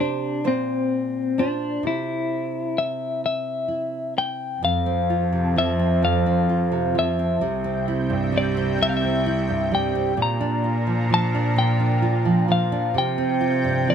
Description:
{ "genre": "acoustic folk-pop ballad", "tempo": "43 BPM (dotted quarters)", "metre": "6/8", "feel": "straight", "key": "F major", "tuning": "A4 = 439 Hz", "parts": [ { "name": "clean electric guitar", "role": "melody", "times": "0.0-13.9 s", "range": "C4 to Bb5", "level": "-24 LUFS", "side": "left 5 dB", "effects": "tremolo" }, { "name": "nylon-string guitar", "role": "accompaniment", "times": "0.0-13.9 s", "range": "F2 to C5", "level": "-25 LUFS", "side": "right 6 dB", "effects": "none" }, { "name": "analog string pad", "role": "sustained chords", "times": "4.6-13.9 s", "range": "C3 to G5", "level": "-30 LUFS", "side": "right 1 dB", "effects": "ensemble chorus" }, { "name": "warm cello", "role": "bass", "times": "4.6-13.9 s", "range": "C2 to C3", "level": "-24 LUFS", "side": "equal", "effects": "none" } ], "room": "light reverb", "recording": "none", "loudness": "-20 LUFS", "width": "side -8 dB against mid", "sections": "0.0-4.6 A section; 4.6-13.9 B section", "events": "none", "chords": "0.4 Bbadd9; 1.8 C; 4.6 F; 7.4 C; 10.2 Bb; 12.9 Csus4" }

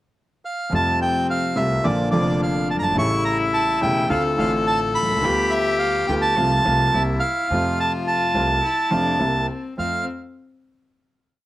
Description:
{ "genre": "tango", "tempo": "106 BPM", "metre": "4/4", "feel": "rubato", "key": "F major", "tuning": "A4 = 440 Hz", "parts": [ { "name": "bandoneon", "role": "melody", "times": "0.5-10.1 s", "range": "D5 to C#6", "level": "-22 LUFS", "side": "right 1 dB", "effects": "slapback echo" }, { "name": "rich cello", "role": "second line", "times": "0.7-10.1 s", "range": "C4 to A4", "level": "-25 LUFS", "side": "left 4 dB", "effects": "none" }, { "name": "warm grand piano", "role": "accompaniment", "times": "0.7-10.0 s", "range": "E1 to F4", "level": "-23 LUFS", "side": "equal", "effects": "none" }, { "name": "upright bass", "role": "bass", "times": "0.7-10.0 s", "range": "E1 to F2", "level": "-28 LUFS", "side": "right 1 dB", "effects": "none" } ], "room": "little or no reverb", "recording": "recorded outdoors, with no room sound", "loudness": "-18 LUFS", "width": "side -15 dB against mid", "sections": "0.0-0.7 pickup bar; 0.7-9.8 A section; 9.8-11.5 final chord", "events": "none", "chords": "0.0 N.C.; 0.7 Fadd9; 1.8 Bb; 3.0 A7; 4.1 Dm7; 5.2 G7/D; 6.4 F/C; 6.9 C7; 7.5 F; 9.2 C7; 9.8 F" }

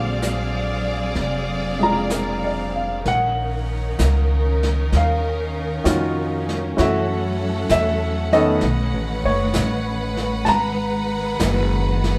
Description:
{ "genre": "jazz ballad", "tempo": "64 BPM", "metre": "4/4", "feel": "swing 69% on 8ths", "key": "Eb minor from 3.1 s", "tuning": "A4 = 440 Hz", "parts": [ { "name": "clear grand piano", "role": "accompaniment", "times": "0.0-12.2 s", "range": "D3 to Bb5", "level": "-25 LUFS", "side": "equal", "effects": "none" }, { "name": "warm symphonic string section", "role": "sustained chords", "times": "0.0-12.2 s", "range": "Eb3 to Gb5", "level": "-28 LUFS", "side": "equal", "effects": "none" }, { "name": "upright bass", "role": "bass", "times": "0.0-12.2 s", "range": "F1 to Gb2", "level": "-25 LUFS", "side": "equal", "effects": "none" }, { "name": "jazz brush drum kit", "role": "drums", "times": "0.2-12.2 s", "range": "brushed snare drum, hi-hat, snare drum", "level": "-31 LUFS", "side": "equal", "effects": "none" } ], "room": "moderate studio reverb, RT60 0.8 s", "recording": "band playing live in one room", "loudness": "-21 LUFS", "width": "mono", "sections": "0.0-3.1 A section; 3.1-12.2 B section", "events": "none", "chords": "0.0 Bb7b13; 3.1 Ebm9; 6.8 Gbm7; 8.6 B9; 10.5 Emaj9 (rootless)" }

